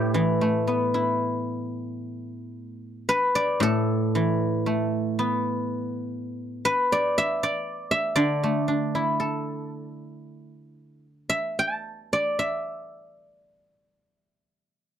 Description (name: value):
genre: chinese traditional, Chinese solo plucked strings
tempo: 55-61 BPM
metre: 2/4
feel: rubato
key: A shang mode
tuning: A4 = 441 Hz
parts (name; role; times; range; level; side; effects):
- guzheng; solo; 0.0-14.1 s; A2 to B5; -24 LUFS; equal; none
room: light reverb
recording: dry, close 1970s-style studio recording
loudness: -23 LUFS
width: side -9 dB against mid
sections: 0.0-2.0 A section; 2.0-15.0 B section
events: none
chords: none